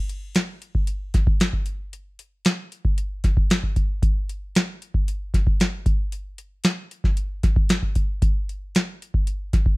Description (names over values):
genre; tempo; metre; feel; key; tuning
pop; 115 BPM; 4/4; straight; none; none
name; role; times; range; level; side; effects
booming analog drum machine; drums; 0.1-9.8 s; hi-hat, kick drum, snare drum; -20 LUFS; equal; none
room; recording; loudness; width
light reverb; dry, close 1970s-style studio recording; -21 LUFS; side -24 dB against mid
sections
0.0-9.8 A section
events
none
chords
none